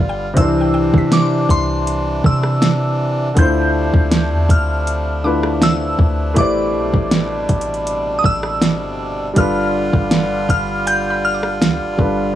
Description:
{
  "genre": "contemporary R&B",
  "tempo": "80 BPM",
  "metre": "4/4",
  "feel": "straight",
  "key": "unclear",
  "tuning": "A4 = 440 Hz",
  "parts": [
    { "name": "glassy synth bell", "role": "melody", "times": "0.0-12.4 s", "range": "C6 to G6", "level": "-23 LUFS", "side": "left 1 dB", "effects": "chorus, tremolo, analog delay" },
    { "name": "warm grand piano", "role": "accompaniment", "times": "0.0-12.4 s", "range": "C3 to D5", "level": "-20 LUFS", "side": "left 1 dB", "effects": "none" },
    { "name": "accordion", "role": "sustained chords", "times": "0.0-12.3 s", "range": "B2 to F4", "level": "-23 LUFS", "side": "equal", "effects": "none" },
    { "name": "soft 808-style bass", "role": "bass", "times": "0.0-12.3 s", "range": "G1 to C3", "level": "-21 LUFS", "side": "equal", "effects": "none" },
    { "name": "mallet-like synth pluck", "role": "texture", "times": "0.0-12.4 s", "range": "B4 to B6", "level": "-31 LUFS", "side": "left 1 dB", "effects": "chorus, analog delay" },
    { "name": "smooth R&B drum kit", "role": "drums", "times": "0.4-12.2 s", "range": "hi-hat, kick drum, rim click, snare drum", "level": "-16 LUFS", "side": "right 1 dB", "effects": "overdrive" }
  ],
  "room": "little or no reverb",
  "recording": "dry, gritty hardware recording",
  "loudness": "-14 LUFS",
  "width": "side -12 dB against mid",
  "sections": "0.0-12.4 A section",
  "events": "none",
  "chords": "0.4 Cmaj9; 3.4 Dm7; 6.4 Am11; 9.4 G7"
}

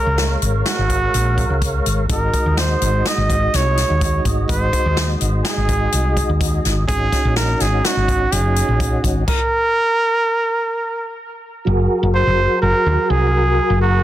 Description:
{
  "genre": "progressive instrumental, band music in an uneven meter",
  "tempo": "125 BPM",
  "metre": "5/4",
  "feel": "straight",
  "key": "Ab mixolydian",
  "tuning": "A4 = 436 Hz",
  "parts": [
    { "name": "warm trumpet", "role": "melody", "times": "0.0-14.0 s", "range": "Gb4 to Eb5", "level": "-20 LUFS", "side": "right 2 dB", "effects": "tape echo" },
    { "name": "mellow tonewheel organ", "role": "accompaniment", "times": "0.0-14.0 s", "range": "Gb3 to F5", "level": "-23 LUFS", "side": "equal", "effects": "chorus vibrato, slow rotary speaker" },
    { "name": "woody fretless electric bass", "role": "bass", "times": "0.1-14.0 s", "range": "Gb1 to Eb2", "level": "-18 LUFS", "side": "equal", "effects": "none" },
    { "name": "swinging big-band drum kit", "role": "drums", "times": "0.2-9.4 s", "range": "crash cymbal, hi-hat, kick drum, snare drum", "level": "-21 LUFS", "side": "equal", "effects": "none" }
  ],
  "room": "light reverb",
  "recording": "dense, heavily limited modern master",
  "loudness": "-15 LUFS",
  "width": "side -13 dB against mid",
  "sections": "0.0-11.7 A section; 11.7-14.0 B section",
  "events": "none",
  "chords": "0.0 Gbmaj7/Ab; 2.1 Ab7; 6.9 Ebm7/Ab; 9.3 N.C.; 11.7 Gbadd9"
}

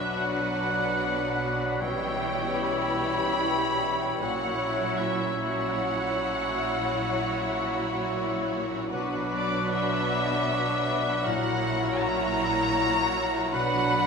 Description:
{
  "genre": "classical, slow romantic movement for symphony orchestra",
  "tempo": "51 BPM (dotted quarters)",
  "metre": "12/8",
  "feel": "rubato",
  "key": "B minor",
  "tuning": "A4 = 439 Hz",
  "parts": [
    { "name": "rich studio violin section", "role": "melody", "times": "0.0-14.1 s", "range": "D5 to B5", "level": "-31 LUFS", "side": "left 2 dB", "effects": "none" },
    { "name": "dark clarinet", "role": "second line", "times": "0.0-14.1 s", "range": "C#4 to E4", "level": "-37 LUFS", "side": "equal", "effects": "none" },
    { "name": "rich studio violin section", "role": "second line", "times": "0.0-14.1 s", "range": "F#4 to C#5", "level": "-33 LUFS", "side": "left 3 dB", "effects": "none" },
    { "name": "silver concert flute", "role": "second line", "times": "0.0-14.1 s", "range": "B5 to F#6", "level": "-35 LUFS", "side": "left 1 dB", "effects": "none" },
    { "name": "warm oboe", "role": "second line", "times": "0.0-14.1 s", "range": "A#4 to C#5", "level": "-35 LUFS", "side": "right 1 dB", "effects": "none" },
    { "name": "mellow bassoon", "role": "accompaniment", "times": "0.0-14.1 s", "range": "F#3 to G3", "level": "-36 LUFS", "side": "right 2 dB", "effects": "none" },
    { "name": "rich studio viola section", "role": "accompaniment", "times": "0.0-14.1 s", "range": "E3 to E4", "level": "-33 LUFS", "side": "right 3 dB", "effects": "none" },
    { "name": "warm French horn section", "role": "sustained chords", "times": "0.0-14.1 s", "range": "F#3 to E4", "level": "-35 LUFS", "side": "left 1 dB", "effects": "none" },
    { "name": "concert harp", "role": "arpeggios", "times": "0.0-14.1 s", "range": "A#2 to G5", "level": "-35 LUFS", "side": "left 4 dB", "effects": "none" },
    { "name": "rich studio cello section", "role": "bass", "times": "0.0-14.1 s", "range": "A#2 to B2", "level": "-37 LUFS", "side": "right 2 dB", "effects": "none" },
    { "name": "rich studio double bass section", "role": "bass", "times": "0.0-14.1 s", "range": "A#1 to B1", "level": "-39 LUFS", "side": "right 5 dB", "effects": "none" }
  ],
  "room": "wet concert hall reverb, RT60 2.1 s",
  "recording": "minimal, uncompressed stereo recording",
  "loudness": "-24 LUFS",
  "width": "side -5 dB against mid",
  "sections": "0.0-14.1 A section",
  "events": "none",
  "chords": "0.0 Bm; 1.8 C#m7b5/B; 4.2 F#7/A#; 8.9 Bm; 11.3 F#7/A#; 13.5 Bm"
}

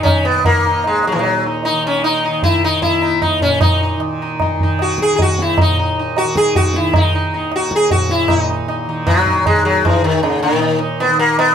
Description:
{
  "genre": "indian classical, Hindustani",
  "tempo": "154 BPM",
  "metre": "3/4",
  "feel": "straight",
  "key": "Eb raga bhairavi",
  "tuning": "A4 = 440 Hz",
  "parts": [
    { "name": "sitar", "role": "melody", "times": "0.0-11.5 s", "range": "Db3 to Ab4", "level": "-15 LUFS", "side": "left 1 dB", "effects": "none" },
    { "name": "tanpura", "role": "drone", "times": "0.0-11.5 s", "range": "Eb2 to Eb3", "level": "-23 LUFS", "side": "right 2 dB", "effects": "none" },
    { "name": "tabla", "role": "percussion", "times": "0.1-11.5 s", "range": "none", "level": "-18 LUFS", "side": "right 1 dB", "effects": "none" }
  ],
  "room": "wet studio ambience, RT60 0.5 s",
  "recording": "band playing live in one room",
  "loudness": "-13 LUFS",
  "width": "side -8 dB against mid",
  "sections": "0.0-8.3 A section; 8.3-11.5 B section",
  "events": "speeding up 0.0-11.5",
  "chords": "none"
}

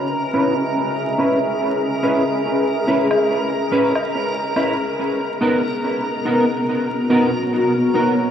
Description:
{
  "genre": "ambient dub",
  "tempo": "71 BPM",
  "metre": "4/4",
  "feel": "swing 57% on 16ths",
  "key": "C# dorian",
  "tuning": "A4 = 440 Hz",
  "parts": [
    { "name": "granular cloud pad", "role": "sustained chords", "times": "0.0-8.3 s", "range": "B3 to E5", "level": "-20 LUFS", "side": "left 1 dB", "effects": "built-in reverb, wide subtle chorus" },
    { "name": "backwards swelling texture", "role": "texture", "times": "0.0-8.3 s", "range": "A#4 to A#5", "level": "-26 LUFS", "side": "equal", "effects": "built-in reverb" },
    { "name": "mellow electric guitar", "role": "stabs", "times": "0.3-8.1 s", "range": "B3 to B4", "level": "-20 LUFS", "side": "equal", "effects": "ensemble chorus, low-pass filter, dub echo" },
    { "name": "woodblock", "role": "drums", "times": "3.1-4.8 s", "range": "none", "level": "-29 LUFS", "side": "equal", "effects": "none" }
  ],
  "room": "wet huge ambient reverb, RT60 7.0 s",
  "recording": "dreamy mix soaked in reverb, vinyl crackle, studio reverb",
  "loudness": "-17 LUFS",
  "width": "side -9 dB against mid",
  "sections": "0.0-8.3 A section",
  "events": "filter sweep on clean electric guitar 0.0-8.3",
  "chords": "0.0 C#m7; 5.0 Bmaj7"
}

